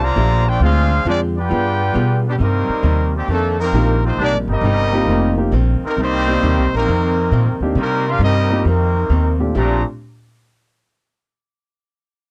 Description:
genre	jazz, big band swing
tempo	134 BPM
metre	4/4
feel	swing 66% on 8ths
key	Bb major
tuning	A4 = 436 Hz
part	clear trumpet section	melody	0.0-9.8 s	G3 to Bb5	-22 LUFS	equal	none
part	muted trombone section	second line	0.0-9.8 s	Bb2 to G4	-28 LUFS	equal	none
part	archtop guitar, miked and amplified	accompaniment	0.0-9.8 s	F2 to Ab4	-26 LUFS	equal	none
part	upright bass	bass	0.0-9.8 s	F1 to C3	-20 LUFS	equal	none
part	warm grand piano	accompaniment	3.7-9.8 s	Bb2 to D5	-23 LUFS	equal	none
room	little or no reverb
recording	dry, close 1970s-style studio recording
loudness	-17 LUFS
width	mono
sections	0.0-2.4 A section; 2.4-9.5 B section; 9.5-11.3 C section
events	none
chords	0.0 Bbmaj13; 0.6 Dm7b5; 1.5 G7b9; 2.4 Cm7; 3.3 F7sus4; 4.2 Cm7; 5.1 F7sus4; 6.0 Cm7; 6.9 F7sus4; 7.8 Cm7; 8.6 F7sus4; 9.5 Bbmaj13

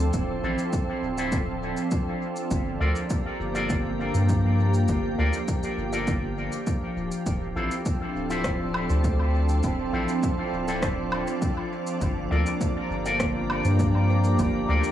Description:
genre	ambient dub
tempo	101 BPM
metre	4/4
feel	straight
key	D minor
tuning	A4 = 439 Hz
part	soft additive organ-like pad	sustained chords	0.0-14.9 s	F3 to D5	-28 LUFS	right 1 dB	ensemble chorus, built-in reverb
part	round analog bass	bass	0.0-14.8 s	D1 to G2	-26 LUFS	equal	tube saturation
part	electronic kick drum	drums	0.1-14.5 s	none	-28 LUFS	equal	overdrive, studio reverb
part	electronic shaker, rim click and woodblock	drums	0.1-14.9 s	none	-36 LUFS	equal	overdrive, studio reverb, dub echo
part	electric guitar with an envelope filter	stabs	0.4-14.9 s	C4 to D5	-32 LUFS	left 2 dB	low-pass filter, dub echo
room	moderate spring reverb, RT60 2.0 s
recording	none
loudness	-23 LUFS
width	side -11 dB against mid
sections	0.0-14.9 A section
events	none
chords	0.0 Dm7; 2.5 Gm7; 7.3 Dm7; 12.0 Gm7

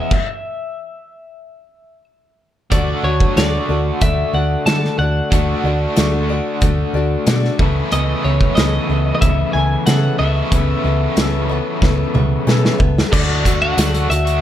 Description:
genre	folk rock and heartland rock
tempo	92 BPM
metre	4/4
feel	straight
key	unclear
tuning	A4 = 440 Hz
part	twelve-string electric guitar	melody	0.0-14.4 s	C#5 to A5	-22 LUFS	left 1 dB	spring reverb
part	picked acoustic archtop guitar	accompaniment	0.0-14.4 s	C#3 to E5	-23 LUFS	left 4 dB	none
part	cranked stack guitar	riff	0.0-14.4 s	E2 to F#4	-23 LUFS	equal	overdrive, tremolo
part	loose indie drum kit	drums	0.1-14.4 s	crash cymbal, hi-hat, kick drum, snare drum, toms	-18 LUFS	equal	none
part	hollow-body short-scale fingered electric bass	bass	2.7-14.4 s	C#2 to D3	-18 LUFS	right 1 dB	none
part	tambourine	percussion	13.8-13.9 s	none	-29 LUFS	right 8 dB	none
room	little or no reverb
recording	none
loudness	-14 LUFS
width	side -11 dB against mid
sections	0.0-2.7 A section; 2.7-13.1 B section; 13.1-14.4 C section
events	stop 0.1-2.7; drum fill 11.8-13.1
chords	0.0 E6; 2.7 D; 7.6 Aadd9/C#; 13.1 D

